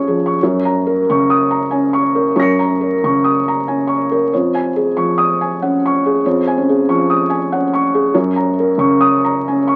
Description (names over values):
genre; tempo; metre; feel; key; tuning
neoclassical minimalist piano; 93 BPM; 3/4; rubato; unclear; A4 = 440 Hz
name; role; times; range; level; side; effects
felt-muted upright piano; solo; 0.0-9.8 s; F2 to Db7; -15 LUFS; equal; none
room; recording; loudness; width
moderate studio reverb, RT60 0.7 s; very old 78 rpm record, vinyl crackle; -15 LUFS; mono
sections
0.4-9.8 A section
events
none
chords
0.4 Gb; 4.3 Db/F; 8.1 Gb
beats
| 0.39 1.06 1.71 | 2.36 3.02 3.67 | 4.32 4.96 5.59 | 6.23 6.86 7.49 | 8.12 8.77 9.42